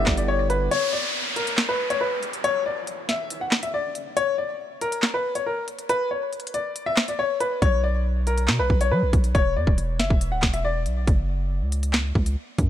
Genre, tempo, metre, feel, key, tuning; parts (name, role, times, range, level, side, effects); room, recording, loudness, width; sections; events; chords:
hip hop, drill; 139 BPM; 4/4; half-time; B harmonic minor; A4 = 440 Hz
clear concert grand piano; melody; 0.0-10.8 s; A#4 to F#5; -25 LUFS; left 3 dB; digital delay
barky tine electric piano; accompaniment; 0.0-0.7 s; D3 to G4; -32 LUFS; right 6 dB; overdrive, lush chorus
long sustained 808-style bass; bass; 0.0-0.7, 7.6-12.7 s; D1 to F#3; -24 LUFS; equal
drill drum kit; drums; 0.1-12.7 s; handclaps, hi-hat, kick drum, rim click, snare drum; -22 LUFS; equal; vintage 12-bit sampler grit
downlifter; sound effects; 0.7-4.2 s; -29 LUFS; equal
little or no reverb; -21 LUFS; side -11 dB against mid
0.7-12.7 A section
break 0.7-7.6
0.0 G; 0.7 N.C.; 7.6 B5; 9.3 E5; 11.1 F#5